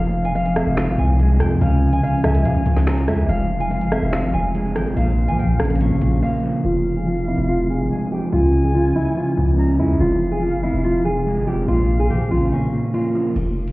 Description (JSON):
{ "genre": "hip hop, drill", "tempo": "143 BPM", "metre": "4/4", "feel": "half-time", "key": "F minor", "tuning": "A4 = 436 Hz", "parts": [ { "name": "nylon-string guitar", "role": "melody", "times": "0.0-13.3 s", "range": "Db4 to Ab5", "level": "-23 LUFS", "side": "equal", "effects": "low-pass filter, ping-pong delay" }, { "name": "silver concert flute", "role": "second line", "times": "0.0-12.9 s", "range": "F5 to Bb5", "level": "-32 LUFS", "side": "left 2 dB", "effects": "ping-pong delay" }, { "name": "electric guitar at the edge of break-up", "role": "accompaniment", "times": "0.0-13.4 s", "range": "F2 to Db4", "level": "-22 LUFS", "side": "right 1 dB", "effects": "low-pass filter" }, { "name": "glassy FM pad", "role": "sustained chords", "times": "0.0-13.3 s", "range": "C3 to F4", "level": "-28 LUFS", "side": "left 2 dB", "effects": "none" }, { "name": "distorted 808-style bass", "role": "bass", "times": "0.0-13.7 s", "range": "F1 to F3", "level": "-20 LUFS", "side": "equal", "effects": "distortion" }, { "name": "drill drum kit", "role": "drums", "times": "0.2-6.1, 13.4-13.7 s", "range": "crash cymbal, finger snaps, hi-hat, rim click, snare drum", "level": "-27 LUFS", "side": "equal", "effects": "none" } ], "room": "digital ambience", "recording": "heard muffled through a wall, stone room reverb, EQ", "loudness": "-16 LUFS", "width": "side -20 dB against mid", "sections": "0.0-6.6 A section; 6.6-13.4 B section", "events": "break 6.2-6.6, 12.5-13.4, 13.4-13.7; filter sweep 6.6-13.4", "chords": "0.0 Fm; 1.6 Db; 3.3 Fm; 5.0 Bbm; 6.6 Fm; 8.3 Db; 10.0 Fm; 11.7 Bbm" }